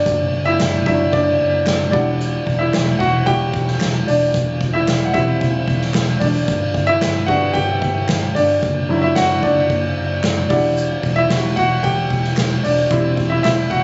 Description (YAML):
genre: piano-driven pop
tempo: 112 BPM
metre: 4/4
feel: straight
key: unclear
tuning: A4 = 442 Hz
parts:
  - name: clear concert grand piano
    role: accompaniment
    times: 0.0-13.8 s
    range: F#3 to G5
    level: -20 LUFS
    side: equal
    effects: none
  - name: vintage muted fingered electric bass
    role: bass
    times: 0.1-13.8 s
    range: E1 to G1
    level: -23 LUFS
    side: equal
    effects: none
  - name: soft-mallet drum kit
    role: drums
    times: 0.1-13.8 s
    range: crash cymbal, hi-hat, kick drum, ride cymbal, snare drum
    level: -24 LUFS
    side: equal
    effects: none
  - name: group handclap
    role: percussion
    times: 0.6-13.6 s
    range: none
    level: -34 LUFS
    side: equal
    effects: none
room: light reverb, studio ambience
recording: recorded on a phone in the room, nothing above 7.9 kHz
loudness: -17 LUFS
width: mono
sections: 0.0-13.8 A section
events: grand piano solo 0.0-13.8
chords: 0.1 Dadd9/F#; 1.9 Emadd9; 4.3 C/E; 6.5 G; 8.6 Dadd9/F#; 10.5 Emadd9; 12.9 C/E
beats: | 0.06 0.59 1.13 1.67 | 2.20 2.74 3.27 3.81 | 4.34 4.88 5.41 5.95 | 6.48 7.02 7.55 8.09 | 8.62 9.16 9.70 10.23 | 10.77 11.30 11.84 12.37 | 12.91 13.44